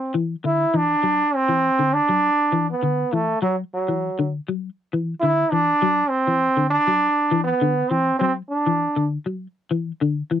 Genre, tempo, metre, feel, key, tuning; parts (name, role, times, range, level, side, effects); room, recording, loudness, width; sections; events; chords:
afrobeat; 100 BPM; 4/4; straight; D mixolydian; A4 = 443 Hz
bright trombone; melody; 0.0-9.1 s; F#3 to E4; -19 LUFS; right 2 dB
clean electric guitar; arpeggios; 0.1-10.4 s; D3 to F#3; -23 LUFS; left 4 dB; ensemble chorus
light reverb; dry, close 1970s-style studio recording; -18 LUFS; side -10 dB against mid
0.0-10.4 A section
0.0 Dadd9